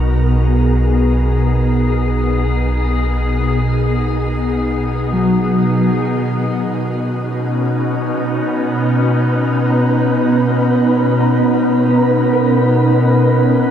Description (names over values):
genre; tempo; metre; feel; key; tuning
ambient; 60 BPM; 4/4; straight; B major; A4 = 440 Hz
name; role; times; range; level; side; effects
glassy FM pad; sustained chords; 0.0-13.7 s; B2 to A#4; -15 LUFS; equal; ensemble chorus, built-in reverb
mellow electric guitar; arpeggios; 0.0-13.7 s; D#3 to B5; -22 LUFS; left 1 dB; tremolo, diffuse ambient delay
round analog bass; bass; 0.0-6.0 s; B1; -18 LUFS; equal; none
wind-like tuned noise texture; texture; 0.0-13.7 s; B3 to A#5; -21 LUFS; equal; built-in reverb
room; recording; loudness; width
wet shimmer reverb, RT60 8.1 s; dark, warm production; -13 LUFS; side -9 dB against mid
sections
0.0-6.0 A section; 6.0-13.7 B section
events
filter sweep on ambient pad 0.0-6.0; fade-in on clean electric guitar 6.0-13.7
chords
0.0 Bmaj7